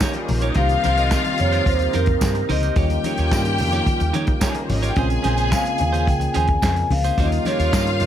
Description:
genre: disco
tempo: 109 BPM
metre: 4/4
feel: straight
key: unclear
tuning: A4 = 441 Hz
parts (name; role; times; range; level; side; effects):
- clear studio string section; second line; 0.0-8.1 s; G3 to Ab5; -26 LUFS; left 2 dB; none
- clean electric guitar; accompaniment; 0.0-8.0 s; Db4 to Eb5; -30 LUFS; right 8 dB; none
- tine electric piano; accompaniment; 0.0-8.1 s; Db3 to G4; -27 LUFS; left 3 dB; lush chorus
- tonewheel organ; sustained chords; 0.0-8.1 s; C3 to Bb4; -30 LUFS; equal; overdrive, chorus vibrato, slow rotary speaker
- warm soul drum kit; drums; 0.0-8.1 s; handclaps, hi-hat, kick drum, snare drum; -23 LUFS; equal; gated reverb
- congas; percussion; 0.0-8.1 s; none; -31 LUFS; left 4 dB; none
- tambourine; percussion; 0.0-7.9 s; none; -34 LUFS; right 5 dB; none
- vintage muted fingered electric bass; bass; 0.3-8.1 s; Ab1 to Eb3; -22 LUFS; equal; none
- vibraphone with medium mallets; melody; 0.6-8.1 s; Bb4 to Ab5; -24 LUFS; moving between left 6 dB and right 10 dB; auto-pan
room: small room ambience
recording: none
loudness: -17 LUFS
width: side -10 dB against mid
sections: 0.0-8.1 A section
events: none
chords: 0.0 Eb7; 0.6 Cm7; 2.8 Eb7; 5.0 Bbm9; 7.2 Eb7

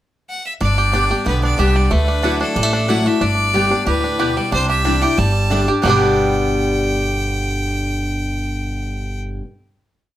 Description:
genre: bluegrass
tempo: 184 BPM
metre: 4/4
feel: straight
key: G major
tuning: A4 = 440 Hz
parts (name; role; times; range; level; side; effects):
- bright fiddle; melody; 0.3-9.2 s; A4 to A5; -22 LUFS; left 1 dB; plate reverb
- picked steel-string acoustic guitar; accompaniment; 0.6-9.5 s; G2 to G4; -20 LUFS; left 2 dB; none
- bluegrass banjo; arpeggios; 0.6-9.5 s; G3 to G4; -22 LUFS; right 3 dB; slapback echo
- upright bass; bass; 0.6-9.4 s; G1 to D2; -20 LUFS; equal; none
- mandolin; stabs; 0.9-9.4 s; A3 to G5; -26 LUFS; right 4 dB; none
room: moderate small room reverb, RT60 0.6 s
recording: none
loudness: -15 LUFS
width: side -13 dB against mid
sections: 0.0-0.6 pickup bar; 0.6-5.8 A section; 5.8-8.4 final chord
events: none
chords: 0.0 N.C.; 0.6 G; 1.9 Dadd9; 3.2 G; 4.5 Cadd9; 5.2 Gsus2; 5.8 G

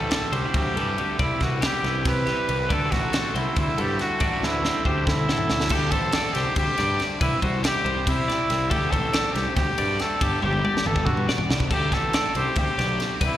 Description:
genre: math rock and midwest emo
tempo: 280 BPM (eighths)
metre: 7/8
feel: straight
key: unclear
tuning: A4 = 440 Hz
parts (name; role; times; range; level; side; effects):
- breathy trumpet; melody; 0.0-13.4 s; E4 to B4; -26 LUFS; equal; slapback echo
- twangy electric guitar; accompaniment; 0.0-7.2 s; A2 to G4; -32 LUFS; right 6 dB; slapback echo
- twelve-string electric guitar; arpeggios; 0.0-13.4 s; G4 to D5; -32 LUFS; left 5 dB; wide subtle chorus, slapback echo
- overdriven semi-hollow guitar; riff; 0.0-13.4 s; G2 to G4; -32 LUFS; equal; slapback echo
- fuzz picked electric bass; bass; 0.0-13.3 s; G1 to D3; -27 LUFS; equal; overdrive
- crisp fusion drum kit; drums; 0.1-13.3 s; crash cymbal, kick drum, ride cymbal, snare drum, toms; -26 LUFS; equal; none
room: light reverb, small room ambience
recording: live gig heard through the venue's PA, recital hall reverb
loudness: -21 LUFS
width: side -12 dB against mid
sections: 0.0-5.7 A section; 5.7-13.4 B section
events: drum fill 4.4-5.7, 10.4-11.7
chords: 0.0 D9sus4; 1.2 Cmaj9; 2.7 D9sus4; 5.7 D7sus4; 7.2 Cmaj9; 8.7 D7sus4; 10.2 Gadd9; 11.7 D7sus4

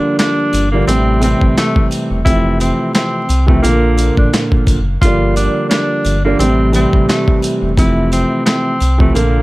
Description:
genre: hip hop, boom-bap hip-hop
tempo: 87 BPM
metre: 4/4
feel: swing 55% on 16ths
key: unclear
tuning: A4 = 437 Hz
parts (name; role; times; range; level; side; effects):
- breathy tenor saxophone; melody; 0.0-9.4 s; A3 to F4; -19 LUFS; equal; high-pass filter, low-pass filter, ping-pong delay
- dark baby grand piano; accompaniment; 0.0-9.4 s; Bb2 to A4; -15 LUFS; right 1 dB; cassette tape, high-pass filter, low-pass filter
- dusty soul sampler-style drum kit; drums; 0.2-9.3 s; handclaps, hi-hat, kick drum, snare drum; -14 LUFS; equal; overdrive
- sleigh bells; percussion; 0.2-9.3 s; none; -33 LUFS; left 3 dB; none
- sub bass with octave; bass; 0.5-9.4 s; E1 to C2; -15 LUFS; equal; none
room: small room reverb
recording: vinyl crackle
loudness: -11 LUFS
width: side -19 dB against mid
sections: 0.0-9.4 A section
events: none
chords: 0.0 Gm7; 0.9 Am7; 2.3 Fmaj7; 3.6 Bbmaj7; 5.0 Gm7; 6.4 Am7; 7.8 Fmaj7

